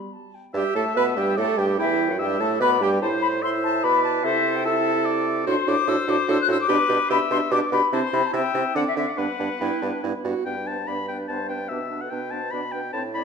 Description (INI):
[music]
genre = quick classical-period movement for wind quintet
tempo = 146 BPM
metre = 3/4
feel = straight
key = G major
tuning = A4 = 440 Hz
[part]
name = silver concert flute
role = melody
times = 0.0-13.2 s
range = G4 to F#6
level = -25 LUFS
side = left 6 dB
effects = none
[part]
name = warm French horn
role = accompaniment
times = 0.0-13.2 s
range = E3 to E4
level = -29 LUFS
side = equal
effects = none
[part]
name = warm clarinet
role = accompaniment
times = 0.0-13.2 s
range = B3 to C5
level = -27 LUFS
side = right 8 dB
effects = none
[part]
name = warm oboe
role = second line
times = 0.5-13.2 s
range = B4 to B5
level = -28 LUFS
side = left 4 dB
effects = none
[part]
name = warm bassoon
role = bass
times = 0.5-13.2 s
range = E2 to D3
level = -28 LUFS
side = right 3 dB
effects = none
[sound]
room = wet recital hall reverb, RT60 1.4 s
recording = none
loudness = -20 LUFS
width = side -6 dB against mid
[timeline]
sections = 0.5-10.5 A section; 10.5-13.2 A section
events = none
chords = 0.0 G; 3.0 Am; 4.2 Am/C; 5.5 D7/A; 6.7 G/B; 7.9 C6; 8.8 D9; 9.2 G; 11.7 A9sus4/B